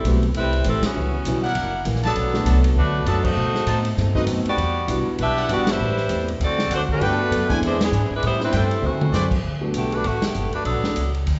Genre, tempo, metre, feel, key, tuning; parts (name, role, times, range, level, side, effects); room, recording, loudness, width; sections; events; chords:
jazz, big band swing; 198 BPM; 4/4; swing 60% on 8ths; G major; A4 = 440 Hz
edgy saxophone section; melody; 0.0-11.1 s; D3 to E5; -26 LUFS; equal
upright bass; bass; 0.0-11.4 s; F#1 to B2; -25 LUFS; equal
swinging big-band drum kit; drums; 0.0-11.3 s; crash cymbal, hi-hat, kick drum, ride cymbal, snare drum, toms; -31 LUFS; equal
picked plugged-in swing-style acoustic guitar; accompaniment; 0.1-9.3 s; F#2 to B4; -32 LUFS; equal
warm upright piano; accompaniment; 0.1-10.9 s; D3 to F#4; -30 LUFS; equal
clear trumpet section; stabs; 1.4-9.3 s; D4 to A5; -32 LUFS; equal
moderate recital hall reverb, RT60 1.5 s; recorded in a church or concert hall, nothing above 7.9 kHz; -21 LUFS; mono
0.0-9.4 A section; 9.4-11.4 B section
band accent 0.8, 3.2, 5.6, 7.8, 10.2; drum fill 8.8-9.1
0.0 Am9; 1.0 C#m7b5; 1.6 F#7b13; 2.2 Bm7; 3.4 B7b9; 4.6 Em9; 5.8 Am11; 6.4 D7; 7.0 Gmaj9; 7.6 E7b13; 8.2 Am11; 8.8 D13; 9.4 Gmaj9; 10.6 Bm7